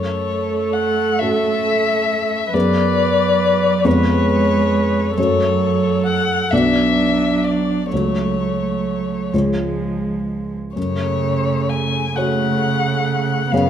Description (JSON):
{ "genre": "classical, slow romantic movement for piano quartet", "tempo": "41-46 BPM (dotted quarters)", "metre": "6/8", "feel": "rubato", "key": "F# minor", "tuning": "A4 = 439 Hz", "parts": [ { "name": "muted violin", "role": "melody", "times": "0.0-13.7 s", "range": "C#5 to G#5", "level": "-20 LUFS", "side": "left 6 dB", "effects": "none" }, { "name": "muted cello", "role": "second line", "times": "0.0-13.7 s", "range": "C#3 to A3", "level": "-22 LUFS", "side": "right 6 dB", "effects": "none" }, { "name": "dark baby grand piano", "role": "accompaniment", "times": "0.0-13.7 s", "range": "B1 to D5", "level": "-21 LUFS", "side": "left 1 dB", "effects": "none" }, { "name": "muted viola", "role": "accompaniment", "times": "0.0-13.7 s", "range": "G#3 to B4", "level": "-24 LUFS", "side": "right 3 dB", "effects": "none" } ], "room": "moderate recital hall reverb, RT60 1.4 s", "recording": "none", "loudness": "-16 LUFS", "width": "side -9 dB against mid", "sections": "0.0-13.7 A section", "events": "none", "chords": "0.0 F#m; 2.5 G#m7b5/F#; 3.9 C#7/E#; 5.2 F#m; 6.5 Bm; 7.9 F#m/C#; 9.3 C#; 10.8 F#m" }